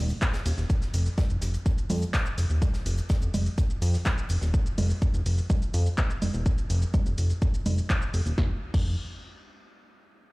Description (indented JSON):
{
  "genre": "melodic techno",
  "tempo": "125 BPM",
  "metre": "4/4",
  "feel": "straight",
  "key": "unclear",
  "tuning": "A4 = 440 Hz",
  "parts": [
    { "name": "fat analog bass", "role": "bass", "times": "0.0-9.0 s", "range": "Eb1 to F2", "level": "-25 LUFS", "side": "equal", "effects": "sidechain pumping" },
    { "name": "crisp fusion drum kit", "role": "drums", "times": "0.1-4.5 s", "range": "hi-hat, snare drum", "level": "-46 LUFS", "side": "left 1 dB", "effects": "sidechain pumping on hats, high-pass filter on hats, high-pass filter on snare, high-pass filter on room" },
    { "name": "punchy analog drum machine", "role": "drums", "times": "0.1-8.8 s", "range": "congas, crash cymbal, handclaps, hi-hat, ride cymbal, shaker, snare drum", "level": "-33 LUFS", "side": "right 1 dB", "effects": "none" },
    { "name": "electronic kick drum", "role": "drums", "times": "0.2-8.8 s", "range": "none", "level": "-25 LUFS", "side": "equal", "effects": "none" }
  ],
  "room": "little or no reverb",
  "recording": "played on a big sound system in a bare room, large studio reverb",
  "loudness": "-24 LUFS",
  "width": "side -24 dB against mid",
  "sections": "0.7-8.4 A section; 8.4-10.3 B section",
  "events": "none",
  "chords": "none",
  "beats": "0.22 | 0.70 1.18 1.66 2.14 | 2.62 3.10 3.58 4.06 | 4.54 5.02 5.50 5.98 | 6.46 6.94 7.42 7.90 | 8.38 8.86"
}